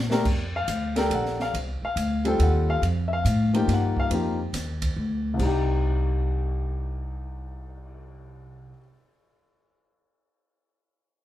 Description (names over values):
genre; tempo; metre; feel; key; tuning
modal jazz; 140 BPM; 3/4; swing 66% on 8ths; C dorian; A4 = 438 Hz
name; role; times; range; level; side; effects
upright bass; bass; 0.0-8.7 s; Bb1 to Bb2; -26 LUFS; equal; none
warm baby grand piano; accompaniment; 0.1-8.8 s; C2 to G5; -27 LUFS; left 2 dB; none
open jazz drum kit; drums; 0.1-7.9 s; crash cymbal, cymbal swell, hi-hat, kick drum, ride cymbal, snare drum; -31 LUFS; right 1 dB; none
room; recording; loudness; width
moderate studio reverb, RT60 0.9 s; heard from further back in the room; -23 LUFS; side -13 dB against mid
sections
0.3-5.4 A section; 5.4-8.0 B section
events
drum fill 0.0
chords
0.3 C9sus4; 5.4 Cm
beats
| 0.25 0.68 1.11 | 1.54 1.97 2.40 | 2.83 3.25 3.68 | 4.11 4.54 4.97 | 5.40 5.83 6.26 | 6.69 7.12 7.55